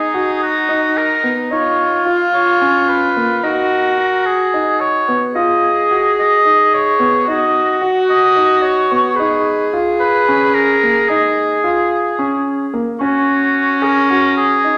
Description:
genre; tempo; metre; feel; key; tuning
contemporary instrumental, chamber music in an uneven meter; 219 BPM (eighths); 7/8; straight; Eb minor; A4 = 441 Hz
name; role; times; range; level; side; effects
clear oboe; melody; 0.0-14.8 s; Gb4 to D#5; -18 LUFS; equal; none
dark viola; second line; 0.0-14.8 s; Db4 to Ab4; -19 LUFS; equal; none
warm grand piano; arpeggios; 0.0-14.8 s; Bb3 to Ab4; -22 LUFS; equal; none
large celesta; texture; 5.6-9.4, 13.0-14.8 s; Db6 to Ab6; -25 LUFS; equal; none
room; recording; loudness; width
wet recital hall reverb, RT60 1.6 s; none; -15 LUFS; mono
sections
0.0-13.0 A section; 13.0-14.8 B section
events
none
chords
0.0 Ebm; 1.5 Db7; 3.4 Ebm; 5.4 B (rootless); 7.3 Ebm7; 9.2 Db7; 13.0 Ebm7 (rootless)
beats
0.15 0.42 0.69 0.97 1.24 | 1.52 1.79 2.07 2.34 2.62 2.89 3.16 | 3.44 3.71 3.99 4.26 4.53 4.81 5.08 | 5.36 5.63 5.90 6.18 6.45 6.72 7.00 | 7.27 7.55 7.82 8.09 8.37 8.64 8.91 | 9.19 9.46 9.73 10.01 10.28 10.55 10.83 | 11.10 11.37 11.65 11.92 12.19 12.46 12.74 | 13.01 13.28 13.56 13.83 14.10 14.38 14.65

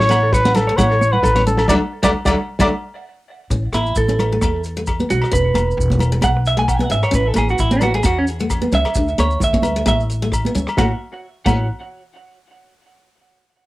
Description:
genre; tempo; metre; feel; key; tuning
highlife guitar band; 132 BPM; 4/4; swing 54% on 16ths; A major; A4 = 441 Hz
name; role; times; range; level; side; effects
breathy trumpet; melody; 0.0-2.7 s; A4 to D5; -17 LUFS; equal; none
semi-hollow electric guitar; arpeggios; 0.0-11.7 s; C#4 to G#5; -21 LUFS; right 3 dB; cassette tape, tape echo
upright bass; bass; 0.0-11.7 s; E1 to E2; -20 LUFS; equal; none
warm soul drum kit; drums; 0.0-11.6 s; crash cymbal, hi-hat, kick drum, rim click, snare drum; -22 LUFS; equal; cassette tape
picked steel-string acoustic guitar; accompaniment; 0.1-11.6 s; F#3 to D4; -23 LUFS; left 2 dB; cassette tape
agogo bells; percussion; 0.1-11.6 s; none; -27 LUFS; left 3 dB; none
congas; percussion; 0.1-11.7 s; none; -23 LUFS; right 3 dB; none
maracas; percussion; 0.1-11.7 s; none; -34 LUFS; right 2 dB; none
room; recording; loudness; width
moderate studio reverb, RT60 0.5 s; home recording on cassette; -15 LUFS; side -18 dB against mid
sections
0.0-3.5 A section; 3.5-10.8 B section; 10.8-12.6 C section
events
band accent 1.7-3.5; drum fill 3.1-3.5; clean electric guitar solo 3.5-10.8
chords
0.0 A6; 1.7 D; 3.5 A; 5.3 E5; 7.1 A; 9.0 Dsus2; 10.8 A6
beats
0.34 0.79 1.24 | 1.70 2.15 2.60 3.06 | 3.51 3.96 4.42 4.87 | 5.32 5.78 6.23 6.69 | 7.14 7.59 8.05 8.50 | 8.96 9.41 9.87 10.32 | 10.77 11.23

